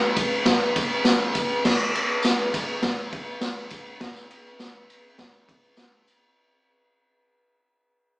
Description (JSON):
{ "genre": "rock", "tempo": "102 BPM", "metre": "4/4", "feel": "straight", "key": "none", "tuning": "none", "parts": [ { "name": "tambourine", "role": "percussion", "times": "0.0-6.3 s", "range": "none", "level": "-37 LUFS", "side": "left 1 dB", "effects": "none" }, { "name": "raw garage drum kit", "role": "drums", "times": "0.2-6.2 s", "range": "crash cymbal, kick drum, ride cymbal, snare drum", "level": "-21 LUFS", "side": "equal", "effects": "none" } ], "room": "light reverb", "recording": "band playing live in one room, small speaker sound", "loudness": "-21 LUFS", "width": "side -25 dB against mid", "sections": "0.0-6.4 A section", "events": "fade-out 0.0-6.4", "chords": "none" }